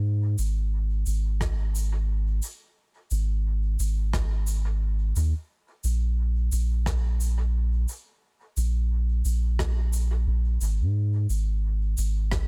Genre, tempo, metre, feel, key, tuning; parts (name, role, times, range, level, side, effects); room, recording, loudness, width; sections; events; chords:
ambient dub; 88 BPM; 4/4; swing 58% on 16ths; A4 = 440 Hz
soft dub sub bass; bass; 0.0-12.5 s; Ab1 to Ab2; -26 LUFS; equal
shaker and rim click; drums; 0.4-12.5 s; -39 LUFS; equal; dub echo
electronic kick drum; drums; 1.4-12.5 s; -33 LUFS; equal
little or no reverb; -26 LUFS; mono
0.0-12.5 A section